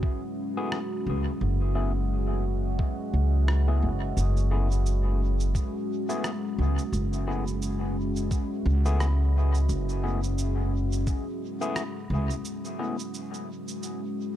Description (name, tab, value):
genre	ambient dub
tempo	87 BPM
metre	4/4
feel	swing 58% on 16ths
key	F# minor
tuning	A4 = 441 Hz
part	deep dark ambient pad	sustained chords	0.0-14.4 s	G#3 to E5	-32 LUFS	equal	chorus, built-in reverb
part	electronic kick drum	drums	0.0-11.2 s	none	-28 LUFS	equal	small room reverb
part	overdriven tine electric piano	stabs	0.6-13.0 s	A3 to G#4	-36 LUFS	left 3 dB	phaser, dub echo
part	electronic rim click and cabasa	drums	0.7-14.0 s	none	-39 LUFS	right 2 dB	small room reverb, dub echo
part	upright bass	bass	1.1-12.3 s	F#1 to C#2	-25 LUFS	equal	tube saturation
room	digital ambience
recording	dark, warm production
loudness	-25 LUFS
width	side -12 dB against mid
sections	0.0-14.4 A section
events	break 12.4-14.4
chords	0.0 F#m11